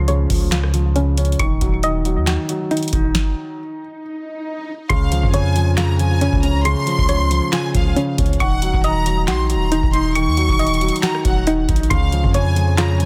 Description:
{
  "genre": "hip hop, trap",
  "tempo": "137 BPM",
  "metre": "4/4",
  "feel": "half-time",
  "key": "unclear",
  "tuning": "A4 = 444 Hz",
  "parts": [
    { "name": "felt-muted upright piano", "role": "accompaniment", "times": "0.0-13.1 s", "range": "Db3 to Eb4", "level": "-24 LUFS", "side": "equal", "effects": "none" },
    { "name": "soft round pluck", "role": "arpeggios", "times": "0.0-13.1 s", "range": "Db4 to Db6", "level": "-26 LUFS", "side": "equal", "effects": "chorus, phaser, digital delay" },
    { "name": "long sustained 808-style bass", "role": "bass", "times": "0.0-13.1 s", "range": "Eb1 to F2", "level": "-21 LUFS", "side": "equal", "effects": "none" },
    { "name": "booming analog drum machine", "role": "drums", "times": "0.1-13.1 s", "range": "handclaps, hi-hat, kick drum, rim click, snare drum", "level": "-23 LUFS", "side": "equal", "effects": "none" },
    { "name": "swell", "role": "sound effects", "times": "3.7-4.9 s", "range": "none", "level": "-32 LUFS", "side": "equal", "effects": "none" },
    { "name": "warm symphonic violin section", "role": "second line", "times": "4.9-13.1 s", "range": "F5 to Db6", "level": "-26 LUFS", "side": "equal", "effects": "digital delay" },
    { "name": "deep dark ambient pad", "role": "sustained chords", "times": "12.7-13.1 s", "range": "F3 to Db5", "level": "-34 LUFS", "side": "equal", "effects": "none" }
  ],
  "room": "digital ambience",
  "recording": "dense, heavily limited modern master",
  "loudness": "-18 LUFS",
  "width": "mono",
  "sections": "0.0-4.9 A section; 4.9-13.1 B section",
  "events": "stop 3.1-4.9; swell 3.7-4.9",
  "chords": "0.0 Dbmaj7; 1.4 Ebm7; 4.9 Dbmaj7; 8.4 Ebm7; 11.9 Dbmaj7"
}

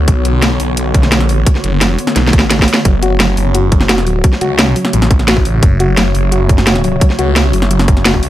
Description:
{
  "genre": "dark technical drum and bass",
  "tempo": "173 BPM",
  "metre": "4/4",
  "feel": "straight",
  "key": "F# minor",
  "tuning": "A4 = 440 Hz",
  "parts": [
    { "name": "swarming drone", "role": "sustained chords", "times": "0.0-8.3 s", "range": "C#3 to C#5", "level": "-20 LUFS", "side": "equal", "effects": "built-in reverb, sidechain pumping" },
    { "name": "phased detuned saw bass", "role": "bass", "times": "0.0-8.3 s", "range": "F#1 to C#2", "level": "-14 LUFS", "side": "equal", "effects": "phaser, overdrive" },
    { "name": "drum and bass drum kit", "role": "drums", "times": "0.1-8.3 s", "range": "hi-hat, snare drum", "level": "-14 LUFS", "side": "equal", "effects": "overdrive" },
    { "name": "electronic kick drum", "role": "drums", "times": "0.1-8.2 s", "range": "none", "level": "-10 LUFS", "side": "equal", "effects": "overdrive" },
    { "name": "soft round pluck", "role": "arpeggios", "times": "2.9-8.1 s", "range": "F#3 to F#4", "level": "-18 LUFS", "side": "left 2 dB", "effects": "chorus, sidechain pumping, digital delay" }
  ],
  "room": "digital ambience",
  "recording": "none",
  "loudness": "-9 LUFS",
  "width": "side -14 dB against mid",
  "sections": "0.0-8.3 A section",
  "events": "drum fill 2.2-2.9",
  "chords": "0.0 Bmadd9; 2.9 F#m"
}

